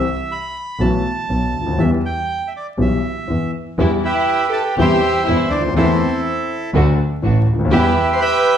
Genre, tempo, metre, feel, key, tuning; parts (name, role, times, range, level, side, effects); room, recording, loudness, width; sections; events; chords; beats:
tango; 122 BPM; 4/4; rubato; E minor; A4 = 439 Hz
bandoneon; melody; 0.0-8.6 s; E4 to C6; -20 LUFS; right 3 dB; plate reverb
warm concert grand piano; accompaniment; 0.0-7.9 s; A1 to A4; -18 LUFS; left 2 dB
clear double bass; bass; 0.0-7.9 s; A1 to E2; -21 LUFS; right 1 dB
rich studio string section; stabs; 3.8-7.9 s; G3 to G4; -26 LUFS; right 2 dB
warm studio violin section; second line; 4.0-8.6 s; C4 to C5; -20 LUFS; left 1 dB
wet large studio reverb, RT60 0.9 s; heard from further back in the room, vinyl crackle; -15 LUFS; side -9 dB against mid
0.0-3.8 A section; 3.8-8.6 A section
0.0 N.C.; 0.8 B7sus4; 1.3 B7; 1.8 Em; 4.8 C/E; 5.8 Am/E; 6.7 D; 7.7 Em
0.32 0.81 1.30 | 1.79 2.28 2.78 3.28 | 3.79 4.28 4.78 5.28 | 5.76 6.25 6.74 7.23 | 7.72 8.20